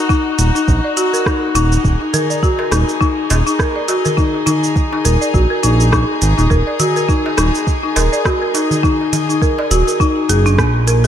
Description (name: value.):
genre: organic downtempo.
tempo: 103 BPM.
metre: 4/4.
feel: swing 57% on 16ths.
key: Eb harmonic minor.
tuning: A4 = 440 Hz.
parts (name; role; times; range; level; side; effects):
warm chamber string section; sustained chords; 0.0-11.1 s; Eb4 to Ab4; -22 LUFS; left 2 dB; sidechain pumping, shimmer reverb.
folk marimba with medium mallets; arpeggios; 0.0-11.1 s; Bb3 to D5; -16 LUFS; left 2 dB; ping-pong delay, shimmer reverb, slapback echo.
electronic kick drum; drums; 0.1-10.7 s; none; -16 LUFS; right 1 dB; none.
organic electronic drum kit; drums; 0.1-11.1 s; hi-hat, rim click, shaker; -22 LUFS; right 2 dB; none.
smooth synth bass; bass; 0.4-11.1 s; Eb1 to Bb1; -14 LUFS; right 1 dB; sidechain pumping.
darbuka; percussion; 2.0-11.1 s; none; -25 LUFS; right 1 dB; none.
room: moderate concert hall reverb, RT60 2.3 s.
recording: big arena sound.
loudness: -12 LUFS.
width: side -9 dB against mid.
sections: 0.0-11.1 A section.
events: none.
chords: 0.0 Ebm.